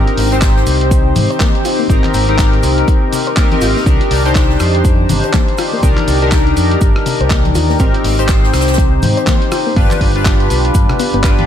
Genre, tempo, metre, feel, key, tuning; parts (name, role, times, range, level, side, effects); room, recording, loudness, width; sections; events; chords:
deep house; 122 BPM; 4/4; swing 59% on 16ths; C minor; A4 = 440 Hz
chorused polysynth; stabs; 0.0-11.5 s; C4 to C5; -15 LUFS; left 2 dB; sidechain pumping, ping-pong delay
dusty soul sampler-style drum kit; drums; 0.1-11.5 s; handclaps, hi-hat, rim click; -22 LUFS; right 1 dB
overdriven fingered electric bass; bass; 0.2-11.4 s; G1 to Ab2; -16 LUFS; equal; sidechain pumping
jazz brush drum kit; drums; 0.2-11.4 s; hi-hat, shaker, snare drum; -29 LUFS; equal; high-pass filter on hats, high-pass filter on snare, high-pass filter on perc, high-pass filter on room
electronic kick drum; drums; 0.4-11.4 s; -13 LUFS; equal
soft round pluck; arpeggios; 1.2-11.3 s; C3 to C5; -24 LUFS; left 4 dB; chorus, sidechain pumping, tape echo
congas; percussion; 1.2-11.5 s; -23 LUFS; left 5 dB
light reverb, studio reverb; -10 LUFS; side -10 dB against mid
0.0-11.5 A section
0.0 Abmaj9; 3.9 Cm9; 7.8 Abmaj9; 9.8 G7